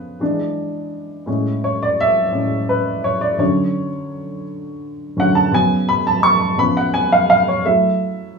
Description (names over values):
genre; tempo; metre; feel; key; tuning
gospel; 56 BPM (dotted quarters); 6/8; straight; unclear; A4 = 441 Hz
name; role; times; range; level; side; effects
warm upright piano; solo; 0.0-8.4 s; A2 to C#6; -16 LUFS; equal; none
room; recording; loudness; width
wet studio reverb, RT60 0.6 s; band playing live in one room, small room reverb; -15 LUFS; side -4 dB against mid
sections
0.0-8.4 A section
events
upright piano solo 0.0-8.4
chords
0.2 E7; 1.3 Amaj7; 3.4 Dmaj7; 5.5 C#7sus4; 6.6 C#7; 7.7 F#m7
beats
0.21 | 1.27 2.33 | 3.40 4.46 | 5.52 6.59 | 7.65